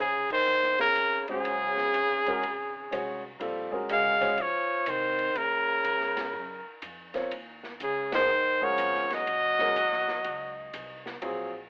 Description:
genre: modal jazz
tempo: 123 BPM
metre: 4/4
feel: swing 66% on 8ths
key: Eb dorian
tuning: A4 = 438 Hz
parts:
  - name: bright trumpet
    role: melody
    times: 0.0-11.0 s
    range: Ab4 to F5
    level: -28 LUFS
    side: equal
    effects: none
  - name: breathy tenor saxophone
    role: second line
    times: 0.0-11.0 s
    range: Db3 to Ab3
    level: -36 LUFS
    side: equal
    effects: none
  - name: upright bass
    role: bass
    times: 0.0-11.7 s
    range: F1 to C3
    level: -53 LUFS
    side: equal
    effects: none
  - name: open jazz drum kit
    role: drums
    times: 0.3-11.4 s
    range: crash cymbal, hi-hat, kick drum, ride cymbal, snare drum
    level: -43 LUFS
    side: equal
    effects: none
  - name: warm baby grand piano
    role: accompaniment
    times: 1.3-11.5 s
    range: Gb3 to Gb5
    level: -35 LUFS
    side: equal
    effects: none
room: moderate small room ambience, RT60 0.5 s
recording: telephone sound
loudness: -28 LUFS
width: mono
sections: 0.0-11.7 A section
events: band accent 0.2, 8.1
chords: 0.0 Ebm11

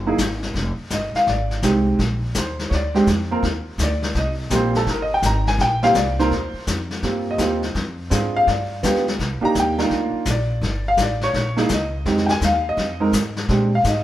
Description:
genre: jazz piano trio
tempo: 167 BPM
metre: 4/4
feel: swing 66% on 8ths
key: Eb major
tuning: A4 = 441 Hz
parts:
  - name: upright bass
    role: bass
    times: 0.0-14.0 s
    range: F1 to Bb2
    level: -24 LUFS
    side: equal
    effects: none
  - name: warm concert grand piano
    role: melody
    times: 0.1-14.0 s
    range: Eb3 to Bb5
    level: -20 LUFS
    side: right 1 dB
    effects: none
  - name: vintage brush drum kit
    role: drums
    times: 0.2-14.0 s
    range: brushed snare drum, hi-hat, kick drum, snare drum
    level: -25 LUFS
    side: left 2 dB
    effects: none
room: moderate stone room reverb, RT60 1.3 s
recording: band playing live in one room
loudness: -18 LUFS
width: side -13 dB against mid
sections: 0.0-6.3 A section; 6.3-14.0 A section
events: grand piano solo 0.0-14.0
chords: 0.0 Gbadd9; 0.5 Fm7; 2.0 Bbadd9; 3.4 Eb6; 7.7 Dm7b5; 8.5 G7; 9.2 Cm9; 10.6 A7(no3)/G; 11.3 Bbmadd11; 12.1 Fm7; 13.5 Bb13

